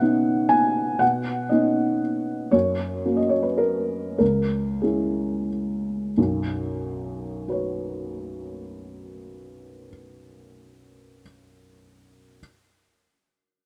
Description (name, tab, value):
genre	neoclassical minimalist piano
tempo	86-122 BPM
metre	3/4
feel	rubato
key	B major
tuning	A4 = 440 Hz
part	felt-muted upright piano	solo	0.0-12.4 s	B1 to G#5	-24 LUFS	equal	none
room	moderate plate reverb, RT60 2.8 s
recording	none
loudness	-24 LUFS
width	mono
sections	0.0-6.2 A section; 6.2-10.1 B section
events	slowing down 1.8-6.2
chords	0.0 Badd9; 2.5 F#; 4.2 C#m; 6.2 Bsus2